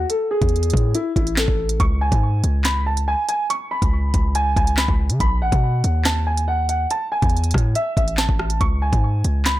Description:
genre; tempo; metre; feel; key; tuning
hip hop, drill; 141 BPM; 4/4; half-time; C# minor; A4 = 440 Hz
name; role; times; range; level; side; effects
dark grand piano; melody; 0.0-9.6 s; E4 to C#6; -23 LUFS; equal; low-pass filter, ping-pong delay
hard-hitting 808-style bass; bass; 0.0-9.6 s; A1 to C#3; -20 LUFS; equal; none
drill drum kit; drums; 0.1-9.6 s; handclaps, hi-hat, kick drum, rim click, snare drum; -20 LUFS; equal; none
room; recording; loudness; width
little or no reverb; blown-out, overdriven recording, overdrive; -17 LUFS; side -15 dB against mid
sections
0.0-1.8 A section; 1.8-9.6 B section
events
none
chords
0.1 A5; 1.8 C#5; 5.2 B; 6.9 A5; 8.6 C#5

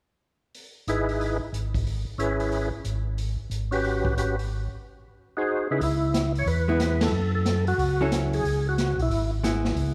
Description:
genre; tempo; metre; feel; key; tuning
soul jazz organ trio; 182 BPM; 4/4; swing 64% on 8ths; C# minor; A4 = 440 Hz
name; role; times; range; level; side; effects
vintage drum kit; drums; 0.5-9.9 s; hi-hat, kick drum, ride cymbal, snare drum; -34 LUFS; equal; none
percussive tonewheel organ; melody; 0.9-9.3 s; C#3 to C#5; -30 LUFS; equal; slow rotary speaker, overdrive, chorus vibrato
mellow tonewheel organ; bass; 0.9-9.9 s; G#1 to F#2; -29 LUFS; equal; overdrive, chorus vibrato, slow rotary speaker
archtop guitar, miked and amplified; accompaniment; 6.7-9.9 s; F#3 to A4; -31 LUFS; equal; none
room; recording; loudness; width
light reverb; none; -26 LUFS; mono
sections
0.5-5.8 A section; 5.8-9.9 B section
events
break 4.5-5.8; band accent 7.0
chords
0.5 G#m; 5.8 C#m7; 7.1 F#m7; 8.4 C#m7

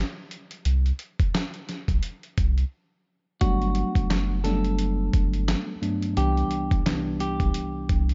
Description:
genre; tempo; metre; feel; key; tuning
hip hop, boom-bap hip-hop; 87 BPM; 4/4; swing 58% on 16ths; G major; A4 = 440 Hz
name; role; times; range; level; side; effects
soft dub sub bass; bass; 0.0-8.1 s; F#1 to C2; -27 LUFS; equal; none
dusty soul sampler-style drum kit; drums; 0.3-8.1 s; handclaps, hi-hat, kick drum, snare drum; -28 LUFS; equal; overdrive
semi-hollow electric guitar; melody; 3.4-8.1 s; F#4 to A4; -35 LUFS; equal; phaser, delay
mellow tine electric piano; accompaniment; 3.4-8.1 s; C2 to D4; -30 LUFS; equal; none
finger snaps; percussion; 4.1-7.1 s; none; barely audible; none; none
room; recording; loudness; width
little or no reverb; dark, warm production, nothing above 7.6 kHz; -25 LUFS; mono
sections
0.0-8.1 A section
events
break 0.0-3.4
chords
0.0 N.C.; 3.4 Gmaj7; 6.2 Cmaj7

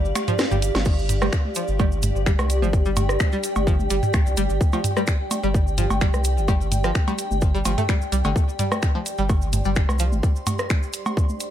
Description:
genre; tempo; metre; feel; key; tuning
minimal techno; 128 BPM; 4/4; swing 54% on 16ths; unclear; A4 = 439 Hz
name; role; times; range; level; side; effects
saturated sub bass; bass; 0.0-10.2 s; G1 to D2; -23 LUFS; equal; sidechain pumping
granular cloud pad; texture; 0.0-11.5 s; G4 to C6; -28 LUFS; left 1 dB; built-in reverb, sidechain pumping
cabasa; percussion; 0.1-11.5 s; none; -35 LUFS; right 5 dB; none
garage drum kit; drums; 0.2-11.5 s; crash cymbal, finger snaps, hi-hat, snare drum; -28 LUFS; left 1 dB; studio ambience
booming analog drum machine; percussion; 0.2-11.4 s; congas, cowbell, rim click, toms; -27 LUFS; right 1 dB; studio ambience, tape echo
string-like resonator pluck; riff; 0.3-10.0 s; D3 to A3; -29 LUFS; equal; chorus, phaser, sidechain pumping, ping-pong delay
electronic kick drum; drums; 0.9-11.3 s; none; -20 LUFS; equal; studio ambience
room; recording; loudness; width
little or no reverb; none; -19 LUFS; side -11 dB against mid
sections
0.0-11.5 A section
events
kick drops out 0.4-0.9; drum fill 0.4-0.9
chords
0.0 G5

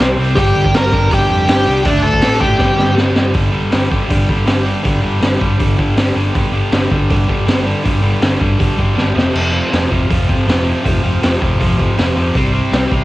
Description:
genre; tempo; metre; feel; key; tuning
punk rock; 160 BPM; 4/4; straight; unclear; A4 = 438 Hz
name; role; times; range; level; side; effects
cranked stack guitar; riff; 0.0-13.0 s; F2 to D4; -18 LUFS; equal; overdrive, cassette tape
overdriven picked electric bass; bass; 0.0-13.0 s; F1 to A2; -18 LUFS; equal; none
raw garage drum kit; drums; 0.0-13.0 s; crash cymbal, hi-hat, kick drum, snare drum; -16 LUFS; equal; cassette tape
high-gain lead guitar; melody; 0.4-2.9 s; D4 to Bb5; -15 LUFS; equal; distortion, cassette tape
room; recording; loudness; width
small room reverb; home recording on cassette, faint mains hum; -12 LUFS; side -17 dB against mid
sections
0.0-3.4 A section; 3.4-13.0 B section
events
drum fill 2.6-3.4, 9.0-9.3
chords
0.4 Gm; 1.9 D5; 2.6 G5; 9.2 F5; 12.3 C5

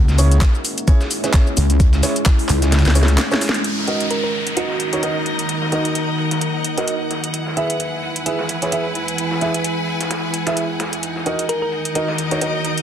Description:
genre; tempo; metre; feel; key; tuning
bass house; 130 BPM; 4/4; swing 56% on 16ths; Eb phrygian; A4 = 442 Hz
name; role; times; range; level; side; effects
deep dark ambient pad; sustained chords; 0.0-12.8 s; Eb3 to B4; -24 LUFS; equal; chorus, built-in reverb, sidechain pumping
wobble bass; bass; 0.0-3.2 s; Db2; -14 LUFS; equal; chorus, overdrive, sidechain pumping
dusty soul sampler-style drum kit; drums; 0.1-12.8 s; hi-hat, snare drum; -32 LUFS; equal; high-pass filter on snare, low-pass filter on snare, high-pass filter on hats, low-pass filter on hats, high-pass filter on room, low-pass filter on room
garage drum kit; drums; 0.1-12.8 s; cabasa, handclaps, hi-hat, snare drum; -22 LUFS; equal; none
dark baby grand piano; stabs; 0.2-12.5 s; Db4 to E5; -25 LUFS; right 2 dB; sidechain pumping, dub echo
electronic kick drum; drums; 0.4-2.4 s; none; -13 LUFS; equal; none
downlifter; sound effects; 3.6-7.3 s; none; -28 LUFS; equal; none
clear studio string section; texture; 3.6-12.8 s; Eb4 to G#5; -25 LUFS; left 2 dB; sidechain pumping
thumb-piano-like synth pluck; melody; 4.1-4.9, 11.5-11.7 s; Gb4 to Bb4; -25 LUFS; right 2 dB; chorus, dub echo
room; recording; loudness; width
light reverb, digital ambience; dense, heavily limited modern master; -16 LUFS; side -9 dB against mid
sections
0.0-3.6 A section; 3.6-12.8 B section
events
drop 0.0-3.6; kick drops out 2.7-3.6; drum fill 2.7-3.6; band accent 3.5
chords
0.0 Dbm; 3.6 Ebm; 7.3 E; 11.0 Ebm

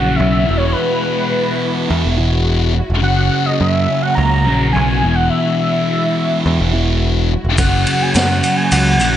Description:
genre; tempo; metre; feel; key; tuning
psychedelic rock; 105 BPM; 4/4; straight; unclear; A4 = 440 Hz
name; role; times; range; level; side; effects
fat analog lead; melody; 0.0-9.2 s; B4 to A#5; -19 LUFS; right 1 dB; slapback echo
dark studio string section; sustained chords; 0.0-9.2 s; G#3 to F#4; -26 LUFS; right 2 dB; none
thick fuzz guitar; riff; 0.0-9.2 s; E2 to F#3; -17 LUFS; left 1 dB; distortion, phaser
picked electric bass; bass; 0.0-9.2 s; E1 to F#2; -16 LUFS; equal; none
raw garage drum kit; drums; 7.6-9.1 s; kick drum, ride cymbal, snare drum; -16 LUFS; equal; none
maracas; percussion; 7.6-9.1 s; none; -29 LUFS; left 4 dB; none
room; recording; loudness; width
light reverb, small room ambience; nothing above 10.3 kHz; -13 LUFS; side -11 dB against mid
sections
0.0-9.2 A section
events
none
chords
0.5 Eadd9; 3.0 F#; 5.0 Eadd9; 7.6 F#

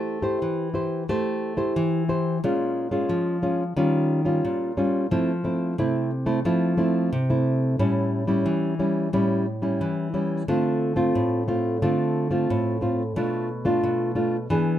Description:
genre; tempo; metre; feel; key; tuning
samba; 89 BPM; 4/4; straight; A minor; A4 = 440 Hz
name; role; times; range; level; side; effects
nylon-string guitar; solo; 0.0-14.8 s; A2 to C5; -22 LUFS; equal; none
room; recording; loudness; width
moderate studio ambience, RT60 0.5 s; dark, warm production; -22 LUFS; side -11 dB against mid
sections
0.0-14.8 A section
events
none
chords
0.0 Am7; 2.4 Bbm7; 3.8 D#9; 5.1 Fmaj7; 7.8 A7; 10.5 Dm7; 13.2 Bm7b5

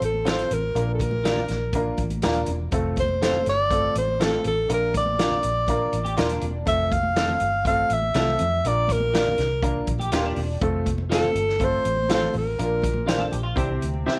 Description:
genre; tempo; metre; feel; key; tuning
uptempo 1960s-style soul; 122 BPM; 4/4; straight; F major; A4 = 440 Hz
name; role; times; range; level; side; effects
breathy alto saxophone; melody; 0.0-13.3 s; A4 to F5; -26 LUFS; equal; none
vintage muted fingered electric bass; bass; 0.0-14.1 s; Eb1 to F2; -30 LUFS; equal; none
swinging big-band drum kit; drums; 0.0-14.2 s; hi-hat, kick drum, snare drum; -31 LUFS; equal; none
congas; percussion; 0.1-14.1 s; none; -40 LUFS; equal; none
warm baby grand piano; accompaniment; 0.2-14.2 s; Bb2 to E5; -31 LUFS; equal; none
electric guitar through a small old amp; stabs; 0.3-14.2 s; E4 to F5; -32 LUFS; equal; analog chorus
semi-hollow electric guitar; riff; 6.0-6.6, 10.0-14.2 s; C4 to A4; -36 LUFS; equal; analog chorus
room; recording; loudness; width
light reverb, small room ambience; none; -23 LUFS; mono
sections
0.0-14.2 A section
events
grand piano fill 13.8-14.2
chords
0.0 F; 0.7 Bb; 2.7 F; 4.7 Bb; 6.7 F; 8.6 Bb; 10.6 F; 12.6 Bb; 13.6 C

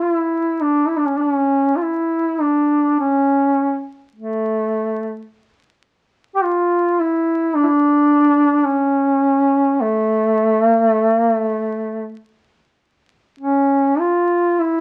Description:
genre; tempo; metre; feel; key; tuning
caucasian folk, Caucasian lament; 52 BPM; 3/4; rubato; unclear; A4 = 439 Hz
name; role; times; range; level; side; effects
dark duduk; solo; 0.0-14.8 s; A3 to G4; -18 LUFS; equal; none
room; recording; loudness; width
moderate studio reverb, RT60 0.7 s; very old 78 rpm record, vinyl crackle; -18 LUFS; mono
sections
0.0-13.4 A section; 13.4-14.8 B section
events
none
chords
none

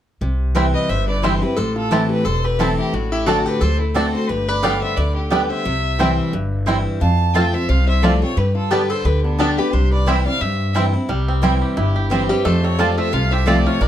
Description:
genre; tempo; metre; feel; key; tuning
bluegrass; 176 BPM; 4/4; swing 56% on 8ths; C major; A4 = 439 Hz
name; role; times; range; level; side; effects
picked steel-string acoustic guitar; accompaniment; 0.2-13.9 s; E2 to G4; -21 LUFS; left 1 dB; none
upright bass; bass; 0.2-13.9 s; E1 to G2; -20 LUFS; equal; none
bluegrass banjo; melody; 0.6-13.9 s; G3 to G4; -25 LUFS; right 2 dB; plate reverb
mandolin; stabs; 0.6-13.6 s; B3 to A5; -22 LUFS; right 3 dB; none
clear fiddle; melody; 0.7-13.9 s; D4 to A5; -24 LUFS; left 1 dB; plate reverb
lap resonator guitar; second line; 0.7-13.9 s; B3 to F5; -26 LUFS; left 1 dB; none
room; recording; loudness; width
light reverb; dark, warm production; -16 LUFS; side -11 dB against mid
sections
0.2-11.1 A section; 11.1-13.9 B section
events
none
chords
0.2 C; 1.6 Am; 2.9 D7/A; 4.3 G; 5.7 C; 7.0 F; 8.4 Gadd9; 9.7 C; 12.4 F

